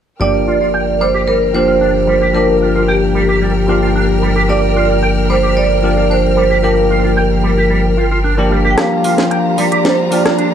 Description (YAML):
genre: nu-disco, nu disco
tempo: 112 BPM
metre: 4/4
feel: straight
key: G minor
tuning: A4 = 440 Hz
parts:
  - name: vibraphone with hard mallets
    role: melody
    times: 0.2-10.5 s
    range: G4 to G5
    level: -16 LUFS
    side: right 2 dB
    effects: low-pass filter, analog delay
  - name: bell-like tine electric piano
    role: accompaniment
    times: 0.2-10.5 s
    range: F3 to G4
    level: -16 LUFS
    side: left 3 dB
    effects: lush chorus, low-pass filter, analog delay
  - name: clear studio string section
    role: sustained chords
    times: 0.2-10.5 s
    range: G3 to F6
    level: -23 LUFS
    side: equal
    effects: none
  - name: electric guitar with an envelope filter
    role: riff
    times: 0.2-10.5 s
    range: G3 to G5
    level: -20 LUFS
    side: right 2 dB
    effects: ensemble chorus, low-pass filter, analog delay
  - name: chorused synth bass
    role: bass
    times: 0.2-8.8 s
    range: G1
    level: -18 LUFS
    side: equal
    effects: none
  - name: house drum kit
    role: drums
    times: 8.8-10.5 s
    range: hi-hat, rim click, snare drum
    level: -17 LUFS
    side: equal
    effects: low-pass filter on snare, studio reverb, low-pass filter on hats, analog delay
room: wet spring reverb, RT60 2.3 s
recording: echo-heavy mix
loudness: -11 LUFS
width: side -8 dB against mid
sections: 0.2-8.8 A section; 8.8-10.5 B section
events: build-up 8.8-10.5; drum fill 8.8-10.5; filter sweep on tine electric piano 8.8-10.5; filter sweep on vibraphone 8.8-10.5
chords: 0.2 Gm7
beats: | 0.20 0.74 1.28 1.81 | 2.35 2.88 3.42 3.96 | 4.49 5.03 5.56 6.10 | 6.63 7.17 7.71 8.24 | 8.78 9.31 9.85 10.38